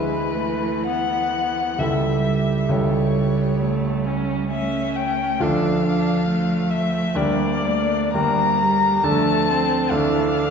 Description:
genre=classical, slow romantic movement for piano quartet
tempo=55-72 BPM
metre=4/4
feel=rubato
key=D minor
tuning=A4 = 440 Hz
part: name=warm violin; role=melody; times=0.0-10.5 s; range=B4 to Bb5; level=-24 LUFS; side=left 5 dB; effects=none
part: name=rich cello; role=second line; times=0.0-10.5 s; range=D3 to A3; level=-25 LUFS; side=right 3 dB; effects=none
part: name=clear concert grand piano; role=accompaniment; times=0.0-10.5 s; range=C#2 to B4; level=-22 LUFS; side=right 1 dB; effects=none
part: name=rich viola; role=accompaniment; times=0.0-10.5 s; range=G3 to D4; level=-27 LUFS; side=right 2 dB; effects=none
room=wet scoring stage reverb, RT60 1.5 s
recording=heard from further back in the room, nothing above 7.6 kHz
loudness=-18 LUFS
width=side -6 dB against mid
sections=0.0-10.5 A section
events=none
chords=0.0 E7/D; 1.8 A7/C#; 5.4 Dm; 7.2 Gm/D; 9.0 Dm

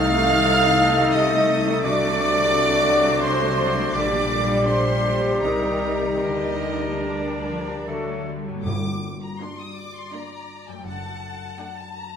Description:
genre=classical, slow romantic movement for symphony orchestra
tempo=72-87 BPM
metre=3/4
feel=rubato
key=G minor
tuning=A4 = 445 Hz
part: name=warm symphonic violin section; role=melody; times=0.0-12.2 s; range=D5 to F6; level=-30 LUFS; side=equal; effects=none
part: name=clear clarinet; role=second line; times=0.0-8.3 s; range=F#4 to A4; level=-28 LUFS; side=left 1 dB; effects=none
part: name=clear oboe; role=second line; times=0.0-8.3 s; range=A4 to Eb5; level=-31 LUFS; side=right 2 dB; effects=none
part: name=mellow large flute ensemble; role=second line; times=0.0-8.3 s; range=D4 to F5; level=-29 LUFS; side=equal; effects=none
part: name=warm symphonic violin section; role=second line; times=0.0-12.2 s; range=D4 to A5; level=-28 LUFS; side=left 2 dB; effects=none
part: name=clear bassoon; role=accompaniment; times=0.0-8.3 s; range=G3 to A3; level=-29 LUFS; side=right 1 dB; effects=none
part: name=rich studio viola section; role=accompaniment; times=0.0-12.1 s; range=C3 to Eb4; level=-30 LUFS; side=right 1 dB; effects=none
part: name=dark French horn section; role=sustained chords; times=0.0-8.3 s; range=F#3 to Bb4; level=-28 LUFS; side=left 4 dB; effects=none
part: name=concert harp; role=arpeggios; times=0.0-12.2 s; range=F#2 to A5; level=-32 LUFS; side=left 8 dB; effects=none
part: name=dark trumpet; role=stabs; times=0.0-8.3 s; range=D4 to F5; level=-25 LUFS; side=right 2 dB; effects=none
part: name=rich symphonic double bass section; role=bass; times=0.0-11.4 s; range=F#1 to D2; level=-31 LUFS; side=right 3 dB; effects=none
part: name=warm symphonic cello section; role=bass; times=0.0-11.4 s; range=F#2 to G3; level=-31 LUFS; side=right 2 dB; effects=none
part: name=timpani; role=percussion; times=8.7-9.7 s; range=G2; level=-34 LUFS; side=equal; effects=none
room=wet recital hall reverb, RT60 1.4 s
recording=none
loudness=-18 LUFS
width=side -7 dB against mid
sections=0.0-8.7 A section; 8.7-12.2 B section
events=none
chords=0.0 Adim/C; 1.8 D7/C; 3.9 Gm/Bb; 5.4 Cm7; 6.2 Gm/D; 7.9 D; 8.7 Gm; 10.9 D/F#

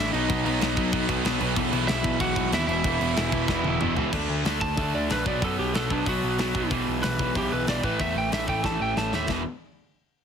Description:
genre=punk rock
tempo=186 BPM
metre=4/4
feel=straight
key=unclear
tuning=A4 = 440 Hz
part: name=lightly driven lead guitar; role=melody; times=0.0-9.3 s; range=D4 to A5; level=-29 LUFS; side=right 2 dB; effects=none
part: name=crunchy overdriven guitar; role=riff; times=0.0-9.4 s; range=E2 to D4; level=-29 LUFS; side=right 14 dB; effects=none
part: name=distorted electric guitar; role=riff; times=0.0-9.4 s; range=E2 to D4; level=-30 LUFS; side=left 15 dB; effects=distortion
part: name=overdriven semi-hollow guitar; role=riff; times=0.0-4.6 s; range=E2 to D4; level=-31 LUFS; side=left 1 dB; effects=none
part: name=fuzz picked electric bass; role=bass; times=0.0-9.4 s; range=E1 to F#2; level=-31 LUFS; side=equal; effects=overdrive
part: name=tight metal drum kit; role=drums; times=0.1-9.4 s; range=crash cymbal, hi-hat, kick drum, snare drum, splash cymbal, toms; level=-30 LUFS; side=left 1 dB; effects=none
room=little or no reverb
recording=heavily compressed radio sound, multiband compression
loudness=-23 LUFS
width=side -7 dB against mid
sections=0.0-4.1 A section; 4.1-9.3 B section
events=drum fill 3.5-4.1, 8.6-9.3; lead electric guitar solo 4.1-9.3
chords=0.1 B; 1.6 E5/B; 2.7 E5; 4.1 D5; 5.3 B5; 6.7 E5/B; 7.8 A5; 9.3 E5

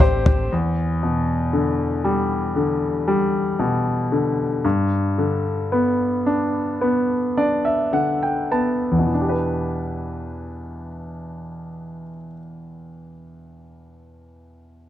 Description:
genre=pop ballad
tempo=50-59 BPM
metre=4/4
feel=straight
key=E minor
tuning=A4 = 440 Hz
part: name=bright concert grand piano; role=accompaniment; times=0.0-14.9 s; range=E2 to A5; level=-20 LUFS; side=left 1 dB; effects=none
part: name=warm studio string section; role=sustained chords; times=0.0-0.5 s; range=A3 to C5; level=-40 LUFS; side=left 1 dB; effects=none
part: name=mellow fretless electric bass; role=bass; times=0.0-0.5 s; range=A1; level=-24 LUFS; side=equal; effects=analog chorus
part: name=toms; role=drums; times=0.0-0.5 s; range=none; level=-17 LUFS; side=left 1 dB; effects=none
room=light reverb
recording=dark, warm production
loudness=-19 LUFS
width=side -12 dB against mid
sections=0.5-9.1 A section; 9.1-13.8 B section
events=grand piano fill 0.0-0.5, 6.8-9.1; drum fill 0.0-0.5; slowing down 0.5-9.1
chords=0.0 D7sus4; 0.5 Em7; 4.6 G; 9.1 Em7

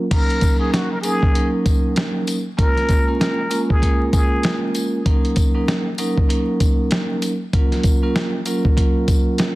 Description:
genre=hip hop, boom-bap hip-hop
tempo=97 BPM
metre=4/4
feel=swing 59% on 16ths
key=Eb minor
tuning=A4 = 439 Hz
part: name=vibraphone with medium mallets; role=accompaniment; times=0.0-9.6 s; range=Gb3 to Bb4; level=-21 LUFS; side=right 1 dB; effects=high-pass filter, low-pass filter
part: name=trumpet with plunger mute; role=melody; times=0.1-4.6 s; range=Gb4 to Bb4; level=-25 LUFS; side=left 1 dB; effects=high-pass filter, low-pass filter, digital delay
part: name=dusty soul sampler-style drum kit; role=drums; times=0.1-9.6 s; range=crash cymbal, hi-hat, kick drum, snare drum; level=-18 LUFS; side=equal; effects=none
part: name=tambourine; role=percussion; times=0.4-9.2 s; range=none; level=-35 LUFS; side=left 5 dB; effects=none
room=small room reverb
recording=dense, heavily limited modern master, vinyl crackle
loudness=-16 LUFS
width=side -19 dB against mid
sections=0.1-9.6 A section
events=none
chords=0.1 Ebm7; 2.6 Bbm7; 5.1 Ebm7; 7.5 Gbmaj7

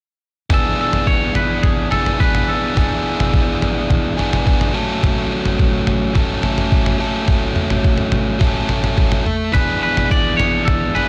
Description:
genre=indie rock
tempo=106 BPM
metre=4/4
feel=straight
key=E mixolydian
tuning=A4 = 440 Hz
part: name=twangy electric guitar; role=melody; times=0.5-3.6, 9.5-11.1 s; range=G#4 to D5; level=-23 LUFS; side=equal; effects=tape echo
part: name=biting overdriven guitar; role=riff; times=0.5-11.1 s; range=E3 to A4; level=-21 LUFS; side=equal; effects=none
part: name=trip hop sampler-style drum kit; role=drums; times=0.5-11.1 s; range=kick drum, toms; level=-20 LUFS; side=equal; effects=none
room=little or no reverb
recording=echo-heavy mix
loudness=-17 LUFS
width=mono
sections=0.5-11.1 A section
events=none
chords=0.5 E7sus4; 4.7 F#m; 9.5 E5

